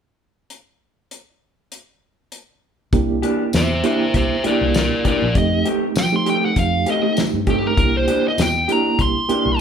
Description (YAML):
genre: straight-eighth soul blues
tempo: 99 BPM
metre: 4/4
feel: swing 55% on 16ths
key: C mixolydian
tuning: A4 = 441 Hz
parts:
  - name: damped 70s drum kit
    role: drums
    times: 0.5-9.4 s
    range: hi-hat, kick drum, snare drum, tambourine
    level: -22 LUFS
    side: left 1 dB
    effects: none
  - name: reed electric piano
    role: accompaniment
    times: 2.9-9.6 s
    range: A3 to G4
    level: -21 LUFS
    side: right 6 dB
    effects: fast tremolo
  - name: vintage muted fingered electric bass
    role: bass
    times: 2.9-9.6 s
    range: Bb1 to F3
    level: -23 LUFS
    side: left 1 dB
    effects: none
  - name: electric guitar through a small old amp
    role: stabs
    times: 3.2-9.5 s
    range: Eb3 to G4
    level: -24 LUFS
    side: left 4 dB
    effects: none
  - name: smooth overdriven lead guitar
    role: melody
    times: 3.6-9.6 s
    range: G4 to C6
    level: -20 LUFS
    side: equal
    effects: none
room: moderate large studio reverb, RT60 0.8 s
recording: band playing live in one room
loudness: -16 LUFS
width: side -7 dB against mid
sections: 0.5-2.9 A section; 2.9-9.6 B section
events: none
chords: 0.5 N.C.; 2.9 C9; 5.4 F9; 7.8 C9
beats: | 0.50 1.11 1.72 2.32 | 2.93 3.53 4.14 4.75 | 5.35 5.96 6.56 7.17 | 7.78 8.38 8.99 9.60